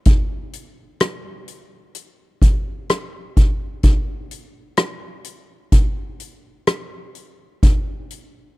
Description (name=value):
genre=pop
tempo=64 BPM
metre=4/4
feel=straight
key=none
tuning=none
part: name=soft-mallet drum kit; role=drums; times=0.1-8.3 s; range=hi-hat, kick drum, rim click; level=-16 LUFS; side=equal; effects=none
room=little or no reverb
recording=dry, close 1970s-style studio recording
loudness=-17 LUFS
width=side -19 dB against mid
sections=0.0-8.6 A section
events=none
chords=none